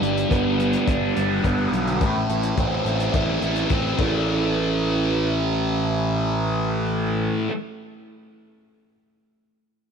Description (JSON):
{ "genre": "psychedelic rock", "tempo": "106 BPM", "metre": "4/4", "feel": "straight", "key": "A minor", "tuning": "A4 = 439 Hz", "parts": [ { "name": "thick fuzz guitar", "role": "riff", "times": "0.0-7.5 s", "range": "G2 to E4", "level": "-22 LUFS", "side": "right 1 dB", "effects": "distortion, phaser" }, { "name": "fuzz picked electric bass", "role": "bass", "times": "0.0-7.3 s", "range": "G1 to B1", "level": "-25 LUFS", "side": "right 1 dB", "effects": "overdrive" }, { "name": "crunchy breakbeat drum kit", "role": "drums", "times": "0.0-4.1 s", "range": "crash cymbal, hi-hat, kick drum", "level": "-27 LUFS", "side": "left 2 dB", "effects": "none" } ], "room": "light reverb, studio reverb", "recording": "1960s-style stereo", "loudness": "-20 LUFS", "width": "side -6 dB against mid", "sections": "0.0-4.3 A section; 4.3-6.6 B section", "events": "none", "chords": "0.0 G; 2.0 Am; 4.0 A5", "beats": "0.30 0.87 1.44 | 2.01 2.57 3.14 3.71 | 4.28 4.85 5.42 5.98" }